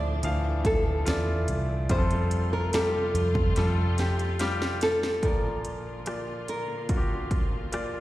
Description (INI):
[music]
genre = pop ballad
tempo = 72 BPM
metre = 4/4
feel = straight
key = unclear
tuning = A4 = 440 Hz
[part]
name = nylon-string guitar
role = melody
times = 0.0-8.0 s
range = G4 to D5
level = -30 LUFS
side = equal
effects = plate reverb, slapback echo
[part]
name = bright grand piano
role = accompaniment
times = 0.0-8.0 s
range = A2 to F5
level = -32 LUFS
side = left 2 dB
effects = plate reverb, slapback echo
[part]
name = warm studio string section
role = sustained chords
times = 0.0-8.0 s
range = C3 to F4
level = -39 LUFS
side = equal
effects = plate reverb
[part]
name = vintage muted fingered electric bass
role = bass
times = 0.0-5.2 s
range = C2 to F2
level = -27 LUFS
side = equal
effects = none
[part]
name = house drum kit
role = drums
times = 0.2-7.9 s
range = hi-hat, kick drum, rim click, snare drum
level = -29 LUFS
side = equal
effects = none
[sound]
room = light reverb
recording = live gig heard through the venue's PA, recital hall reverb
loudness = -24 LUFS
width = side -15 dB against mid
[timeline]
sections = 0.0-5.2 A section; 5.2-8.0 B section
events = drum fill 3.6-5.2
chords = 0.0 Dmadd9; 1.9 Fadd9; 5.2 Bb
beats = 0.23 1.06 | 1.89 2.73 3.56 4.39 | 5.23 6.06 6.89 7.73